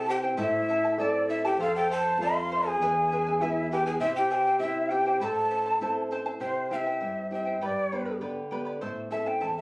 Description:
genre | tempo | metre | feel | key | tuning
andean folk, Andean ensemble | 100 BPM | 2/4 | straight | A minor | A4 = 437 Hz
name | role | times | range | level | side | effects
breathy mellow quena | melody | 0.0-9.6 s | C5 to C6 | -27 LUFS | equal | none
reedy large quena | second line | 0.0-6.1 s | E4 to F5 | -30 LUFS | equal | none
charango | accompaniment | 0.0-9.6 s | E4 to B5 | -33 LUFS | right 1 dB | none
nylon-string guitar | accompaniment | 0.0-9.6 s | E2 to A4 | -34 LUFS | equal | none
room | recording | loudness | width
moderate studio reverb, RT60 0.6 s | recorded on a phone in the room, studio reverb, compression | -25 LUFS | side -23 dB against mid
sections
0.0-6.4 A section; 6.4-9.6 B section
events
none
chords
0.4 Am; 1.6 F; 2.8 E; 4.0 C; 5.2 Am; 6.4 C; 7.6 G; 8.8 Am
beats
| 0.37 0.97 | 1.58 2.18 | 2.79 3.39 | 3.99 4.60 | 5.20 5.80 | 6.41 7.01 | 7.61 8.21 | 8.82 9.42

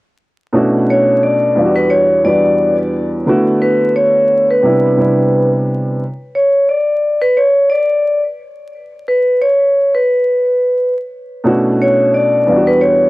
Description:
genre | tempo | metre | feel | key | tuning
hip hop | 88 BPM | 4/4 | swing 55% on 16ths | B minor | A4 = 443 Hz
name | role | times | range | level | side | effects
dark upright piano | accompaniment | 0.5-6.0, 11.4-13.1 s | E2 to F#4 | -14 LUFS | right 1 dB | cassette tape, high-pass filter, low-pass filter
vibraphone with medium hard mallets | melody | 0.9-13.1 s | B4 to D5 | -12 LUFS | equal | high-pass filter, low-pass filter, cassette tape
room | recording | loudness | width
light reverb | home recording on cassette, vinyl crackle | -11 LUFS | side -20 dB against mid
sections
0.6-13.1 A section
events
none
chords
0.6 Bm11; 1.6 Em7; 3.3 D69; 4.6 Cmaj9; 6.0 N.C.; 11.5 Bm11; 12.5 Em7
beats
| 0.55 1.24 1.92 2.60 | 3.28 3.96 4.64 5.33 | 6.01 6.69 7.37 8.05 | 8.73 9.42 10.10 10.78 | 11.46 12.14 12.82

